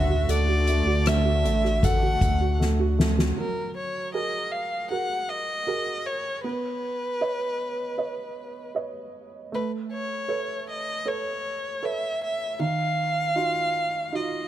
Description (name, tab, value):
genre	pop ballad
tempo	78 BPM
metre	4/4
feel	straight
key	unclear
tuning	A4 = 439 Hz
part	rich violin	melody	0.0-14.5 s	A#4 to F#5	-28 LUFS	equal	none
part	warm upright piano	accompaniment	0.0-14.5 s	D3 to D#5	-30 LUFS	right 4 dB	none
part	sweeping resonant pad	sustained chords	0.0-3.3 s	D3 to F#4	-31 LUFS	left 2 dB	chorus
part	warm sub bass	bass	0.0-3.3 s	A1 to D2	-24 LUFS	left 1 dB	none
part	soft-mallet drum kit	drums	0.3-3.4 s	hi-hat, kick drum, rim click, snare drum	-26 LUFS	left 1 dB	none
room	little or no reverb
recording	none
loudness	-24 LUFS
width	side -12 dB against mid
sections	0.0-3.4 A section; 3.4-14.5 B section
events	drum fill 2.6-3.4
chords	0.0 D; 3.4 F#add9; 6.4 Badd9; 9.5 Aadd9; 12.6 D#madd9